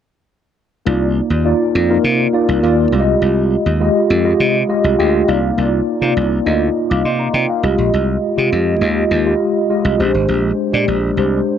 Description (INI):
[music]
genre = polished 1980s jazz-funk pop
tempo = 102 BPM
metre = 4/4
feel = straight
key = C minor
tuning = A4 = 440 Hz
[part]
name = mellow tine electric piano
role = accompaniment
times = 0.9-11.6 s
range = Ab3 to D6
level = -15 LUFS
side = equal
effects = medium stereo tremolo, analog chorus
[part]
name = slap bass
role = bass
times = 0.9-11.4 s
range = Ab1 to C3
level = -17 LUFS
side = equal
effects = none
[sound]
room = moderate plate reverb, RT60 2.6 s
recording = none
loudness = -13 LUFS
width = side -9 dB against mid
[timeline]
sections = 0.9-5.6 A section; 5.6-11.6 B section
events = tine electric piano fill 4.7-5.6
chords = 0.9 Cm11; 2.9 Fm9/C; 5.3 Cm11; 7.6 Fm9; 10.0 Bb13